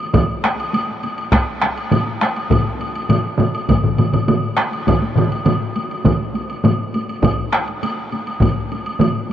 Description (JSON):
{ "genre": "japanese traditional, taiko drum ensemble", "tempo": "102 BPM", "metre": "4/4", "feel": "straight", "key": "none", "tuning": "none", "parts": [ { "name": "taiko ensemble", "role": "percussion", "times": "0.0-9.3 s", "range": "none", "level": "-23 LUFS", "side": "equal", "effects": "none" }, { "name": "woodblock", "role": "percussion", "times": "0.0-9.1 s", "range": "none", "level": "-26 LUFS", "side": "equal", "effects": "none" }, { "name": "taiko ensemble", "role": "percussion", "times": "0.1-9.1 s", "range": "none", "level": "-22 LUFS", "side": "left 4 dB", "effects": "none" }, { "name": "taiko ensemble", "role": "percussion", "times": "0.1-9.1 s", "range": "none", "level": "-21 LUFS", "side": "right 4 dB", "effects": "none" }, { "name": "taiko ensemble", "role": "percussion", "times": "0.1-8.5 s", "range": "none", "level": "-22 LUFS", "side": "right 1 dB", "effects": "none" } ], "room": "moderate huge ambient reverb, RT60 6.6 s", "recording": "worn, warbling old tape, cassette tape, warbly pitch drift", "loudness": "-16 LUFS", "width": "side -10 dB against mid", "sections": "0.0-9.3 A section", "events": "none", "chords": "none" }